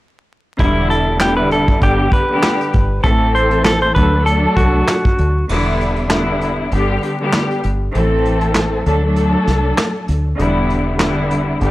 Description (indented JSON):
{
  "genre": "hip hop, boom-bap hip-hop",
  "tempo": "98 BPM",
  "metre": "4/4",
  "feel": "swing 56% on 16ths",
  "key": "unclear",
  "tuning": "A4 = 440 Hz",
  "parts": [
    { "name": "clean electric guitar", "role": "melody", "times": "0.6-5.4 s", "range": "E4 to C5", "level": "-18 LUFS", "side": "equal", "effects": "high-pass filter, low-pass filter" },
    { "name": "warm studio string section", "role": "accompaniment", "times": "0.6-11.7 s", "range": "D3 to A4", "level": "-17 LUFS", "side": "left 1 dB", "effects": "cassette tape, high-pass filter, low-pass filter" },
    { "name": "deep dub fingered electric bass", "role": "bass", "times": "0.6-11.7 s", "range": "E1 to D2", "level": "-18 LUFS", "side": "equal", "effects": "none" },
    { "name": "vintage brush drum kit", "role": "drums", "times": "0.6-11.7 s", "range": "crash cymbal, handclaps, hi-hat, kick drum, snare drum", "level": "-18 LUFS", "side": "equal", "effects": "none" }
  ],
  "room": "small room ambience",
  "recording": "dry, gritty hardware recording, vinyl crackle",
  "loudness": "-13 LUFS",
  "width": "side -17 dB against mid",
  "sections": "0.6-5.5 A section; 5.5-11.7 B section",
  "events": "break 5.5-11.7",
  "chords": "0.6 Em7; 1.8 G; 3.0 Am; 4.0 D; 5.5 Em7; 6.7 G; 7.9 Am; 8.9 D; 10.4 Em7"
}